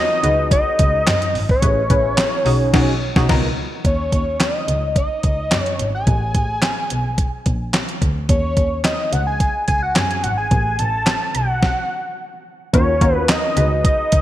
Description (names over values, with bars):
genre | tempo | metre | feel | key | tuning
early-eighties boogie funk | 108 BPM | 4/4 | straight | unclear | A4 = 441 Hz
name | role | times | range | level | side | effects
fat analog lead | melody | 0.0-14.2 s | C#5 to A5 | -20 LUFS | equal | none
funky polysynth comp | accompaniment | 0.0-3.5, 12.7-14.2 s | B3 to C#5 | -24 LUFS | left 1 dB | chorus
rich double bass | bass | 0.2-14.2 s | G#1 to F#2 | -22 LUFS | equal | none
clean 12-bit digital drum machine | drums | 0.2-14.2 s | crash cymbal, handclaps, hi-hat, kick drum, snare drum | -19 LUFS | equal | gated reverb
room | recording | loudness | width
light reverb | bright 1980s-style digital production | -16 LUFS | side -13 dB against mid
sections
0.0-3.8 A section; 3.8-12.7 B section; 12.7-14.2 A section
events
band accent 2.7-3.8; stop 11.6-12.7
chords
0.2 C#9sus4; 1.6 Amaj9; 2.5 B69; 3.3 C#13; 3.8 C#sus2/D#; 4.7 C#sus24; 6.1 N.C.; 6.9 A#7b9; 8.3 C#sus2/D#; 9.1 C#sus4; 10.5 N.C.; 11.3 B5; 12.7 D#m9; 13.6 C#9sus4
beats
0.51 1.07 | 1.62 2.18 2.73 3.29 | 3.85 4.40 4.96 5.51 | 6.07 6.62 7.18 7.74 | 8.29 8.85 9.40 9.96 | 10.51 11.07 11.62 12.18 | 12.73 13.29 13.85